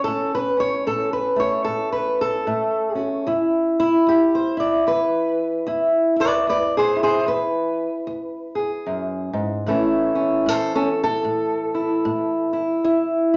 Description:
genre	acoustic country blues, solo or duo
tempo	75 BPM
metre	4/4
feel	swing 60% on 8ths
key	A major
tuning	A4 = 441 Hz
part	fingerpicked old ladder-braced acoustic guitar	solo	0.0-13.4 s	E2 to D5	-21 LUFS	equal	none
room	wet large studio reverb, RT60 0.8 s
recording	nothing above 7.6 kHz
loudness	-21 LUFS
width	mono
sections	0.0-13.4 A section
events	steel-string acoustic guitar solo 0.0-13.4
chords	0.0 A; 3.3 E; 9.7 A; 12.9 N.C.

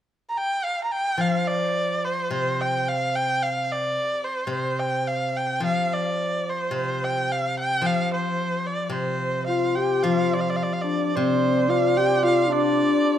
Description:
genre	chinese traditional, Chinese chamber ensemble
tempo	109 BPM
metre	2/4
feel	rubato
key	unclear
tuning	A4 = 439 Hz
part	clear erhu	melody	0.3-13.2 s	C5 to Bb5	-25 LUFS	right 1 dB	none
part	steel-string zither	accompaniment	1.2-12.8 s	C3 to F3	-27 LUFS	left 1 dB	none
part	breathy mellow low xiao	second line	9.5-13.2 s	C4 to G4	-23 LUFS	left 6 dB	none
part	hammered dulcimer	second line	9.5-13.2 s	C4 to G4	-24 LUFS	right 6 dB	none
room	moderate recital hall reverb, RT60 1.4 s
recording	dark, warm production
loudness	-21 LUFS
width	side -10 dB against mid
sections	0.1-1.2 A section; 1.2-10.1 B section; 10.1-13.2 C section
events	none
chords	none

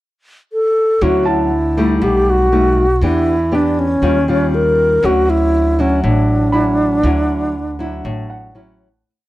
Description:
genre	bossa nova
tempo	119 BPM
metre	4/4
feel	straight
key	D major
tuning	A4 = 441 Hz
part	wooden-headed alto flute	melody	0.5-8.5 s	C#4 to Bb4	-15 LUFS	equal	none
part	nylon-string guitar	accompaniment	1.0-9.0 s	A2 to G4	-19 LUFS	left 1 dB	none
part	upright bass	bass	1.0-9.0 s	A1 to E2	-19 LUFS	equal	none
part	clear concert grand piano	accompaniment	1.3-2.2, 6.5-9.3 s	F#5 to B5	-26 LUFS	right 4 dB	none
room	small room ambience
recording	dry, close 1970s-style studio recording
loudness	-12 LUFS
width	side -16 dB against mid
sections	0.0-1.0 pickup bar; 1.0-9.1 A section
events	fade-out 7.0-9.1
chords	0.0 N.C.; 1.0 Dmaj9; 2.0 B7b13; 3.0 Em7; 4.0 Eb9; 5.0 Dmaj9

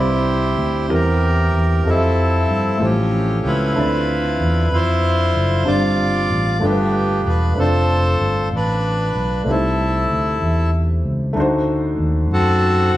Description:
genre	slow gospel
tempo	63 BPM (dotted quarters)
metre	6/8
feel	straight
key	C major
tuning	A4 = 440 Hz
part	accordion	melody	0.0-13.0 s	B3 to D5	-20 LUFS	equal	none
part	warm concert grand piano	accompaniment	0.0-13.0 s	G2 to B5	-21 LUFS	equal	none
part	fingered electric bass	bass	0.0-13.0 s	E1 to G2	-19 LUFS	equal	none
room	wet large studio reverb, RT60 1.3 s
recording	band playing live in one room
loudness	-15 LUFS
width	side -15 dB against mid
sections	0.0-13.0 A section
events	none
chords	0.0 Cmaj9; 0.9 C7/E; 1.9 Fmaj9; 2.8 A7alt; 3.8 Dm9; 5.7 G7sus4; 6.6 G9; 7.6 F6; 9.5 C6; 11.4 D7b9

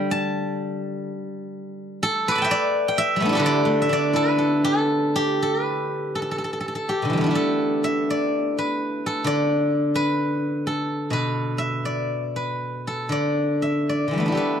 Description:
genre	chinese traditional, Chinese solo plucked strings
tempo	58-66 BPM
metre	2/4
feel	rubato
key	D zhi mode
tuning	A4 = 440 Hz
part	steel-string zither	solo	0.0-14.6 s	B2 to D6	-21 LUFS	equal	none
room	little or no reverb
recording	dry, close 1970s-style studio recording, lossy compression artefacts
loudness	-20 LUFS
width	side -8 dB against mid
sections	0.0-5.4 A section; 5.4-14.6 B section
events	none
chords	none

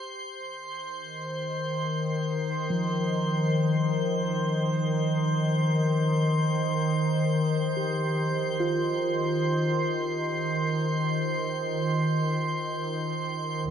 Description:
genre	ambient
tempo	free time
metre	none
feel	none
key	unclear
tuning	A4 = 441 Hz
part	muted felt-like synth keys	arpeggios	0.0-13.7 s	F3 to G4	-33 LUFS	left 1 dB	chorus, dub echo
part	drifting glass-harmonics texture	texture	0.0-13.7 s	C5 to C6	-30 LUFS	right 2 dB	chorus, built-in reverb
part	organ-like drone	drone	1.2-13.7 s	Eb3	-27 LUFS	left 1 dB	ensemble chorus, built-in reverb
room	wet plate reverb, RT60 3.8 s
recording	echo-heavy mix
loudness	-25 LUFS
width	side -8 dB against mid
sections	0.0-13.7 A section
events	fade-out on synth keys 0.0-13.7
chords	0.4 F5/Eb

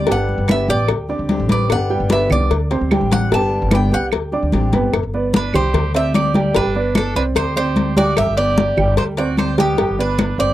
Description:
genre	latin, Cuban son and guajira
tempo	148 BPM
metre	4/4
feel	straight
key	G major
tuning	A4 = 440 Hz
part	Cuban tres	melody	0.0-10.5 s	G4 to A5	-21 LUFS	equal	none
part	fingerpicked old ladder-braced acoustic guitar	accompaniment	0.0-4.9 s	D3 to G4	-24 LUFS	left 3 dB	none
part	upright bass	bass	0.0-10.5 s	G1 to D2	-20 LUFS	equal	none
part	dark grand piano	arpeggios	0.1-10.5 s	G3 to G6	-21 LUFS	right 3 dB	none
part	congas	percussion	0.1-10.5 s	none	-20 LUFS	left 2 dB	none
part	cowbell	percussion	0.1-10.4 s	none	-24 LUFS	left 8 dB	none
part	claves	percussion	0.5-10.4 s	none	-29 LUFS	right 9 dB	none
part	clear trumpet	second line	5.3-10.5 s	B3 to G4	-29 LUFS	right 7 dB	none
room	light reverb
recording	dry, close 1970s-style studio recording, lossy compression artefacts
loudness	-15 LUFS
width	side -14 dB against mid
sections	0.0-4.9 A section; 4.9-10.5 B section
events	Cuban tres solo 0.0-4.9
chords	0.1 Gadd9; 0.9 D7sus4; 1.7 G; 2.5 D7sus4; 3.3 Gadd9; 4.1 D7sus4; 4.9 G; 5.7 D7sus4; 6.6 G; 7.4 D7sus4; 8.2 G; 9.0 D7sus4; 9.8 G

